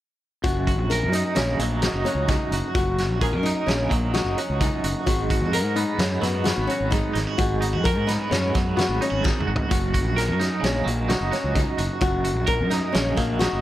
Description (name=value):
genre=math rock and midwest emo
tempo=130 BPM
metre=5/4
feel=straight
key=F# major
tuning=A4 = 440 Hz
part: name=twangy electric guitar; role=accompaniment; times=0.4-13.6 s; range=F#2 to A#4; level=-27 LUFS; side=right 5 dB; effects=tremolo, tape echo
part: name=flamenco guitar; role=arpeggios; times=0.4-13.6 s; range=A#3 to A#4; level=-27 LUFS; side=left 4 dB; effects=none
part: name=fuzz fingered electric bass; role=bass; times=0.4-13.6 s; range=F#1 to G#2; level=-26 LUFS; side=equal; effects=overdrive
part: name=loose indie drum kit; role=drums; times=0.4-13.5 s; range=hi-hat, kick drum, snare drum, toms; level=-26 LUFS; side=equal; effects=tape echo
room=light reverb, small room ambience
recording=echo-heavy mix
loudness=-20 LUFS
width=side -14 dB against mid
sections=0.4-13.6 A section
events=drum fill 9.2-9.7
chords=0.4 F#6; 5.1 C#7sus4/G#; 9.7 F#6